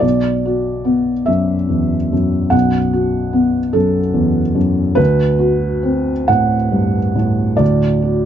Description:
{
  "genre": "neoclassical minimalist piano",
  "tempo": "45-49 BPM (dotted quarters)",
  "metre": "6/8",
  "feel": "rubato",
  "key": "unclear",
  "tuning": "A4 = 440 Hz",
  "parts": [
    { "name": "felt-muted upright piano", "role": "solo", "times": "0.0-8.3 s", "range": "B1 to F#5", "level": "-13 LUFS", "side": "equal", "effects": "none" }
  ],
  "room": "light reverb",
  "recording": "dark, warm production, nothing above 7.8 kHz",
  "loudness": "-13 LUFS",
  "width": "side -9 dB against mid",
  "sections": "0.0-8.3 A section",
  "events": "none",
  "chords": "0.0 Bm7; 5.0 D7"
}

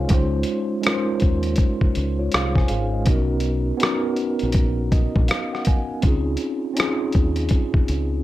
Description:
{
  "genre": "lo-fi hip hop",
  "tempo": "81 BPM",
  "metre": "4/4",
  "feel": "swing 63% on 16ths",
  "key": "Db major",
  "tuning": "A4 = 443 Hz",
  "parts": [
    { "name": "mellow tine electric piano", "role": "accompaniment", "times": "0.0-8.2 s", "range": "Ab3 to Ab5", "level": "-23 LUFS", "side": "equal", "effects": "medium stereo tremolo, cassette tape, low-pass filter, plate reverb" },
    { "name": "deep dub fingered electric bass", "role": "bass", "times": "0.0-8.2 s", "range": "Ab1 to Eb2", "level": "-24 LUFS", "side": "equal", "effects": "none" },
    { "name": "dusty soul sampler-style drum kit", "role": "drums", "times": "0.1-8.1 s", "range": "hi-hat, kick drum, rim click", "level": "-20 LUFS", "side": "equal", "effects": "none" }
  ],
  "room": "light reverb",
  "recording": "cassette tape",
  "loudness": "-19 LUFS",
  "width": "side -15 dB against mid",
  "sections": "0.1-8.2 A section",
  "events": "none",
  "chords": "0.1 Dbmaj9; 3.1 Cbmaj9; 6.0 Dbmaj9"
}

